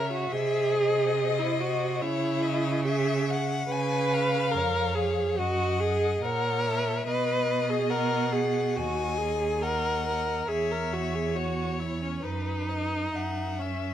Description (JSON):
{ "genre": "classical, slow romantic movement for string quartet", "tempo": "70 BPM", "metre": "4/4", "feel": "rubato", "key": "unclear", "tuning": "A4 = 440 Hz", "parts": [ { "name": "dark violin", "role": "melody", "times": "0.0-13.9 s", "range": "B4 to F#5", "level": "-35 LUFS", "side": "left 13 dB", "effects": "none" }, { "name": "warm violin", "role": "second line", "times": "0.0-13.9 s", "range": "B4 to G#5", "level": "-34 LUFS", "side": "left 5 dB", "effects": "none" }, { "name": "warm viola", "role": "accompaniment", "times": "0.0-13.9 s", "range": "C#4 to B4", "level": "-28 LUFS", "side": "right 1 dB", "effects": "none" }, { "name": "rich cello", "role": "bass", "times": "0.0-13.9 s", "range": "D#2 to C#3", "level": "-31 LUFS", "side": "right 4 dB", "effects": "none" } ], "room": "light reverb", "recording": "close, detailed microphones", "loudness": "-25 LUFS", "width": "side -10 dB against mid", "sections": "0.0-13.9 A section", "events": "none", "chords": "0.3 G#/B#; 2.0 C#m; 3.7 C#7; 5.4 F#; 7.1 B; 8.8 D#m; 10.5 C#m/E; 12.3 B/F#; 13.1 F#5" }